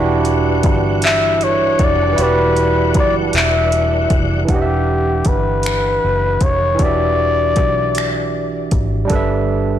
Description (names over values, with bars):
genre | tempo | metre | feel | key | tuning
slow six-eight R&B | 52 BPM (dotted quarters) | 6/8 | straight | E minor | A4 = 437 Hz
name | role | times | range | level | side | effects
barky tine electric piano | accompaniment | 0.0-9.8 s | E3 to F#5 | -20 LUFS | right 6 dB | none
tonewheel organ | sustained chords | 0.0-4.4 s | E3 to F#5 | -24 LUFS | left 2 dB | chorus vibrato, slow rotary speaker
vintage muted fingered electric bass | bass | 0.0-9.8 s | E1 to B1 | -20 LUFS | equal | tube saturation
smooth R&B drum kit | drums | 0.2-9.3 s | finger snaps, handclaps, hi-hat, kick drum | -19 LUFS | equal | soft clipping on snare
breathy flugelhorn | melody | 1.1-8.7 s | G4 to E5 | -17 LUFS | left 3 dB | ping-pong delay
room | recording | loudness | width
light reverb, digital ambience | blown-out, overdriven recording, overdrive | -13 LUFS | side -10 dB against mid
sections
0.0-4.5 A section; 4.5-9.8 B section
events
none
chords
0.0 Em9; 4.5 Em7; 9.1 G6